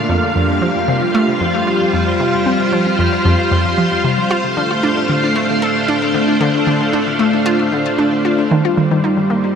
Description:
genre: ambient, sequencer-driven space music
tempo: 114 BPM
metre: 4/4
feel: straight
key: unclear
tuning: A4 = 438 Hz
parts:
  - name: string machine, full ensemble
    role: sustained chords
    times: 0.0-9.6 s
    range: G3 to F5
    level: -15 LUFS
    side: equal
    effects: ensemble chorus
  - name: wind-like tuned noise texture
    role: texture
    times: 0.0-8.5 s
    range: F4 to F5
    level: -25 LUFS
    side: left 1 dB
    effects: built-in reverb
  - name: analog pluck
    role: riff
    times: 0.1-9.4 s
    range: F2 to A4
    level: -17 LUFS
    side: left 1 dB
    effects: chorus, ping-pong delay
room: wet huge ambient reverb, RT60 8.8 s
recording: none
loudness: -13 LUFS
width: side -7 dB against mid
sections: 0.0-8.5 A section; 8.5-9.6 B section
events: none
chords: 0.1 Fsus2; 4.3 Dm7; 8.5 Eb

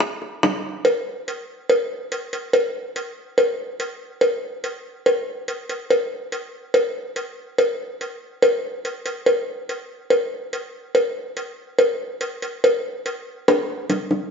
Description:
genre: latin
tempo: 143 BPM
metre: 4/4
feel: straight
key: none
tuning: none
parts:
  - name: bongos and cowbell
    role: percussion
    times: 0.0-14.2 s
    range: none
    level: -20 LUFS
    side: equal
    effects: none
room: wet stone room reverb, RT60 1.4 s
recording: band playing live in one room, nothing above 7.8 kHz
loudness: -21 LUFS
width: side -6 dB against mid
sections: 0.8-14.3 A section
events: drum fill 13.5-14.3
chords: none

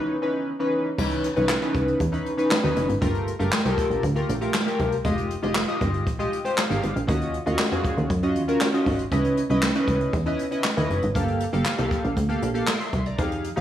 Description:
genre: early-eighties boogie funk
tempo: 118 BPM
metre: 4/4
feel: straight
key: unclear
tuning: A4 = 439 Hz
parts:
  - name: chorused polysynth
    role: accompaniment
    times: 0.0-13.6 s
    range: Fb3 to D6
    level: -24 LUFS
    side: equal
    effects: none
  - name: plucky analog bass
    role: bass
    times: 1.0-13.6 s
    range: F1 to Gb2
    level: -26 LUFS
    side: equal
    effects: none
  - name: jazz brush drum kit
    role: drums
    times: 1.0-13.6 s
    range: crash cymbal, handclaps, hi-hat, kick drum, snare drum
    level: -27 LUFS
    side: equal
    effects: gated reverb
room: light reverb, studio ambience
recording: none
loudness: -21 LUFS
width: side -11 dB against mid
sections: 1.0-13.6 A section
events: break 0.0-1.0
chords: 0.0 Dbm9; 3.0 Gm9; 5.0 Fm9; 7.1 Ebm9; 9.1 Dbm9; 11.2 Gm9

